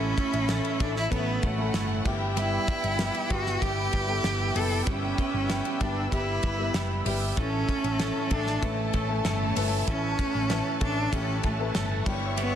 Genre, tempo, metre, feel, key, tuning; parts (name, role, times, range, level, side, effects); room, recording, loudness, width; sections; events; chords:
piano-driven pop; 96 BPM; 4/4; straight; A4 = 440 Hz
clear cello; melody; 0.0-12.6 s; A3 to A4; -30 LUFS; right 1 dB
warm studio violin section; second line; 0.0-12.6 s; E4 to C#6; -36 LUFS; left 2 dB
warm upright piano; accompaniment; 0.0-12.6 s; G2 to B4; -34 LUFS; left 4 dB
warm analog pad; sustained chords; 0.0-12.6 s; A4 to F#6; -40 LUFS; left 2 dB; chorus
twelve-string electric guitar; riff; 0.0-12.6 s; A2 to A4; -35 LUFS; right 7 dB; phaser
hollow-body short-scale picked electric bass; bass; 0.0-12.6 s; F#1 to A1; -31 LUFS; equal
damped 70s drum kit; drums; 0.2-12.5 s; crash cymbal, hi-hat, kick drum, ride cymbal, snare drum; -32 LUFS; equal
light reverb; dense, heavily limited modern master, lossy compression artefacts; -25 LUFS; side -9 dB against mid
0.0-12.6 A section
0.0 A; 2.1 Em; 7.4 A